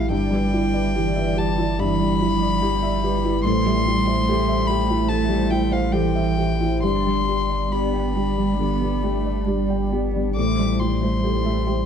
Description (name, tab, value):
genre	neoclassical piano and strings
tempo	70 BPM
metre	4/4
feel	uneven beats, rubato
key	A minor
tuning	A4 = 440 Hz
part	rich violin	melody	0.0-11.9 s	F5 to D6	-26 LUFS	left 3 dB	none
part	warm cello	second line	0.0-11.9 s	E3 to B3	-26 LUFS	right 9 dB	none
part	felt-muted upright piano	accompaniment	0.0-11.9 s	G2 to G5	-23 LUFS	left 3 dB	none
part	brassy analog pad	sustained chords	0.0-11.9 s	G3 to D5	-32 LUFS	right 1 dB	chorus, phaser
part	marimba with soft mallets	arpeggios	0.0-11.8 s	E4 to G5	-32 LUFS	right 4 dB	tape echo
part	pure sine sub bass	bass	0.0-11.9 s	G1 to A1	-25 LUFS	equal	none
room	moderate recital hall reverb, RT60 1.6 s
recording	dark, warm production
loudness	-19 LUFS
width	side -8 dB against mid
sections	0.0-11.9 A section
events	none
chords	0.1 Em7/G; 3.5 Am7; 6.8 G; 10.4 Am7